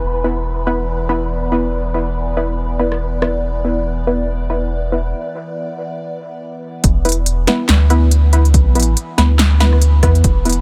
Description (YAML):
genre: deep dubstep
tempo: 141 BPM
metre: 4/4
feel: swing 58% on 16ths, half-time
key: unclear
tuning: A4 = 439 Hz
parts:
  - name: overtone-sweeping drone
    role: sustained chords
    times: 0.0-10.6 s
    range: E3 to D5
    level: -28 LUFS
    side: equal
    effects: chorus, built-in reverb, phaser
  - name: soft dub sub bass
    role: bass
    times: 0.0-10.6 s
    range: E1 to E2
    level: -17 LUFS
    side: equal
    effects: none
  - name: wind-like tuned noise texture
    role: texture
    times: 0.0-5.1 s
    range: B4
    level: -32 LUFS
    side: equal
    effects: built-in reverb
  - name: filtered dub chord stab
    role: stabs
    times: 0.2-10.6 s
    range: B3 to B4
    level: -23 LUFS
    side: equal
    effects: chorus, dub echo
  - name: deep house drum kit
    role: drums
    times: 2.9-3.3, 6.8-10.6 s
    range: handclaps, hi-hat, rim click, snare drum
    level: -21 LUFS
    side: equal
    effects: none
  - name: electronic kick drum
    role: drums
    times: 6.8-10.3 s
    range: none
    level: -18 LUFS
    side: equal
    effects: none
room: little or no reverb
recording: none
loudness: -16 LUFS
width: mono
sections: 0.0-6.8 A section; 6.8-10.6 B section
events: filter sweep on drum 0.0-6.8; break 5.1-6.8; drop 6.8-10.6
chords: 0.0 E5